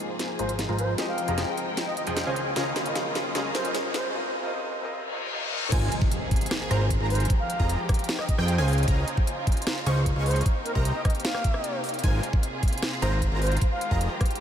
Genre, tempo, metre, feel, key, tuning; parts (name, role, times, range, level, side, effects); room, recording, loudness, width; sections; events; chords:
future bass; 152 BPM; 4/4; half-time; Ab major; A4 = 440 Hz
felt-muted upright piano; accompaniment; 0.0-5.7 s; C3 to Eb5; -35 LUFS; left 2 dB; vintage 12-bit sampler grit, sidechain pumping, ping-pong delay
dark chamber string section; sustained chords; 0.0-14.4 s; C3 to G5; -36 LUFS; equal; sidechain pumping
trap drum kit; drums; 0.0-14.4 s; crash cymbal, hi-hat, rim click, snare drum; -33 LUFS; equal
riser, reverse cymbal and impact; sound effects; 2.3-7.3 s; -36 LUFS; left 1 dB
bright reedy baroque flute; melody; 0.4-4.1, 6.7-14.0 s; Bb4 to F5; -33 LUFS; right 1 dB; sidechain pumping, ping-pong delay
supersaw stab; riff; 0.4-14.1 s; F3 to Db6; -33 LUFS; equal; sidechain pumping, low-pass filter, ping-pong delay
fat analog bass; bass; 0.4-14.1 s; F1 to F2; -25 LUFS; equal; sidechain pumping
wide unison pluck; arpeggios; 5.7-14.1 s; G5 to Db6; -37 LUFS; right 1 dB; phaser, cassette tape, sidechain pumping
electronic kick drum; drums; 5.7-14.3 s; -24 LUFS; equal
moderate huge ambient reverb, RT60 8.7 s; dreamy mix soaked in reverb, high-pass filter; -24 LUFS; side -9 dB against mid
0.0-5.7 A section; 5.7-14.4 B section
build-up 0.0-5.7; drum fill 0.0-4.1; filter sweep on supersaw synth 0.0-5.7; filter sweep 0.0-5.7; riser 2.3-4.1; break 4.1-5.7; reverse cymbal 5.1-5.7; drop 5.7-14.4; impact 5.7-7.3
0.0 Ab69; 1.0 Fm9; 2.4 Db69; 4.1 Cm7; 5.7 Ab69; 7.3 Fm9; 8.7 Db69; 10.5 Cm7; 12.0 Ab69; 13.6 Fm9